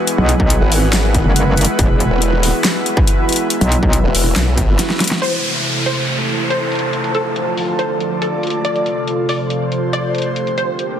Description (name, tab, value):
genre	heavy wobble dubstep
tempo	140 BPM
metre	4/4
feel	half-time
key	unclear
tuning	A4 = 441 Hz
part	evolving wavetable pad	sustained chords	0.0-11.0 s	C3 to B4	-22 LUFS	left 1 dB	chorus, built-in reverb, sidechain pumping
part	airy breathy pad	texture	0.0-11.0 s	E4 to A5	-21 LUFS	right 1 dB	chorus, sidechain pumping
part	dubstep drum kit	drums	0.1-10.9 s	crash cymbal, handclaps, hi-hat, snare drum	-20 LUFS	left 1 dB	low-pass filter on hats, low-pass filter on snare, low-pass filter on cymbals
part	metallic wobble bass	bass	0.2-4.0 s	E1 to B1	-14 LUFS	equal	chorus, overdrive
part	electronic kick drum	drums	0.4-4.7 s	none	-16 LUFS	equal	distortion
part	formant-sweep wobble bass	bass	0.6-4.8 s	E1 to B1	-15 LUFS	equal	chorus, overdrive
part	wide unison pluck	melody	5.2-11.0 s	A4 to D5	-22 LUFS	equal	lush chorus, dub echo
part	downlifter	sound effects	5.2-8.6 s	none	-22 LUFS	equal	none
room	moderate lush hall reverb, RT60 2.4 s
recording	dense, heavily limited modern master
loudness	-14 LUFS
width	side -9 dB against mid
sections	0.0-5.2 A section; 5.2-11.0 B section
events	drop 0.0-5.2; drum fill 4.8-5.2; band accent 5.1; filter sweep on ambient pad 5.2-11.0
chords	0.0 Eadd9; 5.2 Am; 6.9 Dm; 8.6 F; 10.4 Gm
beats	| 0.07 0.50 0.93 1.36 | 1.79 2.22 2.65 3.08 | 3.50 3.93 4.36 4.79 | 5.22 5.65 6.08 6.50 | 6.93 7.36 7.79 8.22 | 8.65 9.07 9.50 9.93 | 10.36 10.79